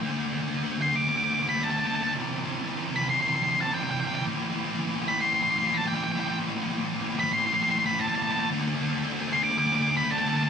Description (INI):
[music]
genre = rock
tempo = 113 BPM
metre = 4/4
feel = straight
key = A minor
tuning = A4 = 442 Hz
[part]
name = sludgy distorted guitar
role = riff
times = 0.0-10.5 s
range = A2 to A3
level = -27 LUFS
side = left 1 dB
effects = overdrive
[part]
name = octave-fuzz lead guitar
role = melody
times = 0.8-10.5 s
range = G5 to D6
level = -27 LUFS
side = equal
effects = distortion, tape echo
[sound]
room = moderate studio reverb, RT60 0.8 s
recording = band playing live in one room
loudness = -24 LUFS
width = side -7 dB against mid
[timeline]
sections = 0.0-10.5 A section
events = build-up 0.0-10.5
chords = 0.0 D5; 2.1 C; 4.3 A5; 8.5 D5